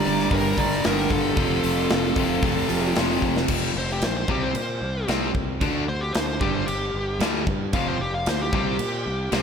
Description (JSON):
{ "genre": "hard rock", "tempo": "113 BPM", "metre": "4/4", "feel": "straight", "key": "unclear", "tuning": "A4 = 441 Hz", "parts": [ { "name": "dark smooth lead guitar", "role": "melody", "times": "0.0-9.4 s", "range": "G4 to F5", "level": "-28 LUFS", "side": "left 1 dB", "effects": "overdrive, slapback echo" }, { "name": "octave-fuzz lead guitar", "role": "second line", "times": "0.0-2.9 s", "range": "F4 to Bb4", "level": "-33 LUFS", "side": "right 5 dB", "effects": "distortion, slapback echo, tape echo" }, { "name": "biting overdriven guitar", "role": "riff", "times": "0.0-9.4 s", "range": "F2 to D4", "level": "-29 LUFS", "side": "right 9 dB", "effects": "slapback echo" }, { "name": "cranked stack guitar", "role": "riff", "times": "0.0-9.4 s", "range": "F2 to D4", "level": "-29 LUFS", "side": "left 11 dB", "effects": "overdrive, slapback echo" }, { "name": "cranked stack guitar", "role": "riff", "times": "0.0-3.5 s", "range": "F2 to G3", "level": "-29 LUFS", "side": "left 1 dB", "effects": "overdrive, slapback echo" }, { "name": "big rock drum kit", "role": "drums", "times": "0.0-9.4 s", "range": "crash cymbal, hi-hat, kick drum, snare drum", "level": "-26 LUFS", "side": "equal", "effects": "none" }, { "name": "fuzz fingered electric bass", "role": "bass", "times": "0.1-9.4 s", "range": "F1 to Bb2", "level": "-29 LUFS", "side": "equal", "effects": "overdrive" } ], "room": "moderate lush hall reverb, RT60 2.8 s", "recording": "big arena sound", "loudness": "-21 LUFS", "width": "side -6 dB against mid", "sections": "0.0-3.5 A section; 3.5-9.4 B section", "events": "drum fill 3.2; lead electric guitar solo 3.5-9.4", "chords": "0.0 Gm; 1.4 F; 3.5 F5; 4.3 C5; 5.6 D5; 6.4 G5; 7.7 F5; 8.5 C5", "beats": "0.32 0.85 | 1.38 1.91 2.44 2.96 | 3.50 4.03 4.55 5.09 | 5.62 6.15 6.68 7.21 | 7.74 8.27 8.80 9.33" }